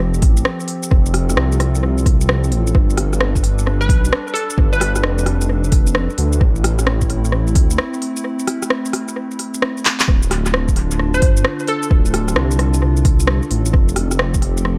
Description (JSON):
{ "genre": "future garage", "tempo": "131 BPM", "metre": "4/4", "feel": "swing 65% on 16ths", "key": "D dorian", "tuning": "A4 = 440 Hz", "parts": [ { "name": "warbly tape-like pad", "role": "sustained chords", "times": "0.0-14.8 s", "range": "D3 to B4", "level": "-28 LUFS", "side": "equal", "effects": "chorus, built-in reverb, vintage 12-bit sampler grit, sidechain pumping" }, { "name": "dark detuned saw bass", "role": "bass", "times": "0.0-14.8 s", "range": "D1 to D2", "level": "-20 LUFS", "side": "equal", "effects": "sidechain pumping" }, { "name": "deep house drum kit", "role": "drums", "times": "0.1-14.8 s", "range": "handclaps, hi-hat, rim click, shaker", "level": "-23 LUFS", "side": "equal", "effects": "small room ambience, analog delay" }, { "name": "electronic kick drum", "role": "drums", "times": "0.2-14.4 s", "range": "none", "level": "-17 LUFS", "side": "equal", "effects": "small room ambience" }, { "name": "hollow square pluck", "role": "melody", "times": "3.8-4.9, 11.1-12.3 s", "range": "A4 to C5", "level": "-26 LUFS", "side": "equal", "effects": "analog chorus, analog delay" } ], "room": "light reverb", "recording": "echo-heavy mix", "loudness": "-17 LUFS", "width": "mono", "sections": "0.0-14.8 A section", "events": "break 8.2-10.1; drum fill 9.8", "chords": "0.0 Fadd9; 2.7 Gadd9; 6.4 Am; 10.1 Dm; 13.7 Fadd9" }